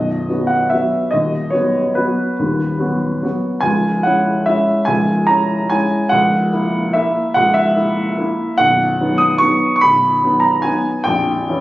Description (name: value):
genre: classical, piano waltz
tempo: 145 BPM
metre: 3/4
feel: uneven beats, rubato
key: B major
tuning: A4 = 440 Hz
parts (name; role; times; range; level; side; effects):
- warm baby grand piano; solo; 0.0-11.6 s; A#0 to D#6; -14 LUFS; equal; none
room: wet recital hall reverb, RT60 1.4 s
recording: recorded on a phone in the room, studio reverb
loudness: -14 LUFS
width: side -16 dB against mid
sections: 0.0-11.6 A section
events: none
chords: 0.0 B; 1.1 B/D#; 3.6 C#m; 6.1 A#dim/C#; 8.6 B; 11.1 A#dim7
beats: 0.29 0.73 | 1.15 1.55 1.98 | 2.40 2.80 3.24 | 3.65 4.06 4.47 | 4.88 5.29 5.71 | 6.11 6.52 6.95 | 7.37 7.78 8.19 | 8.60 9.01 9.42 | 9.83 10.24 10.66 | 11.07 11.50